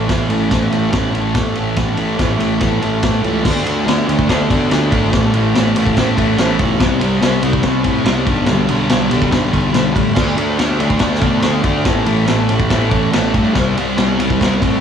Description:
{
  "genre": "garage rock duo or trio",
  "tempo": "143 BPM",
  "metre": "4/4",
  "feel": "straight",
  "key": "unclear",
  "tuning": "A4 = 440 Hz",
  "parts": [
    { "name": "thick fuzz guitar", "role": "riff", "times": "0.0-14.8 s", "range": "G2 to D4", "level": "-16 LUFS", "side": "equal", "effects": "distortion" },
    { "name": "fuzz picked electric bass", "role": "bass", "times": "0.0-14.8 s", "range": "G#1 to B2", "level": "-20 LUFS", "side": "equal", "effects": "overdrive" },
    { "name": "vintage drum kit", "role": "drums", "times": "0.1-14.7 s", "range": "crash cymbal, kick drum, ride cymbal, snare drum", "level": "-18 LUFS", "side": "equal", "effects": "none" }
  ],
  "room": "light reverb, small room ambience",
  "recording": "none",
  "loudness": "-13 LUFS",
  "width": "side -8 dB against mid",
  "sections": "0.0-3.4 A section; 3.4-14.8 B section",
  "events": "none",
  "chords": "0.0 A5; 3.4 D5; 5.1 A5; 6.8 C5; 8.3 G/B; 10.2 D5; 11.9 A5; 13.5 C5"
}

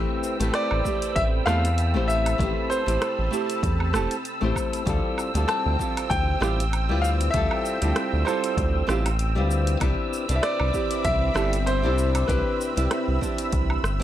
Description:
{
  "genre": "sunset chillout",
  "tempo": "97 BPM",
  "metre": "4/4",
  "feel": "swing 56% on 16ths",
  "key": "D dorian",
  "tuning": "A4 = 440 Hz",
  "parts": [
    { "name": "flamenco guitar", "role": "accompaniment", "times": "0.0-14.0 s", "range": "G3 to C5", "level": "-28 LUFS", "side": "moving between left 7 dB and right 7 dB", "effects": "auto-pan, analog delay" },
    { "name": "lush unison pad", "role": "sustained chords", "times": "0.0-14.0 s", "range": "C4 to E6", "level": "-33 LUFS", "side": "equal", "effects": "chorus, phaser" },
    { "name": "round analog bass", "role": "bass", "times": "0.0-14.0 s", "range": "E1 to E2", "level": "-24 LUFS", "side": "equal", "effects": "none" },
    { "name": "wind-like tuned noise texture", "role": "texture", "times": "0.0-14.0 s", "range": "E6", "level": "-34 LUFS", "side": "right 2 dB", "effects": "built-in reverb" },
    { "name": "deep house drum kit", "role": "drums", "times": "0.2-14.0 s", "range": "hi-hat, rim click, shaker, woodblock", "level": "-31 LUFS", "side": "right 1 dB", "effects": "studio reverb" },
    { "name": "bright concert grand piano", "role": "melody", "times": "0.5-14.0 s", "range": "B4 to A5", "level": "-28 LUFS", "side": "left 1 dB", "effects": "tape echo" },
    { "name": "electronic kick drum", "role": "drums", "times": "0.9-13.7 s", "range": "none", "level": "-29 LUFS", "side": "equal", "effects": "studio reverb" }
  ],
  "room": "little or no reverb",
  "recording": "dry, gritty hardware recording",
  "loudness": "-21 LUFS",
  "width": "side -12 dB against mid",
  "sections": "0.0-14.0 A section",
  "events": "none",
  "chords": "0.0 Am9; 4.9 Dm11; 9.8 Cmaj9"
}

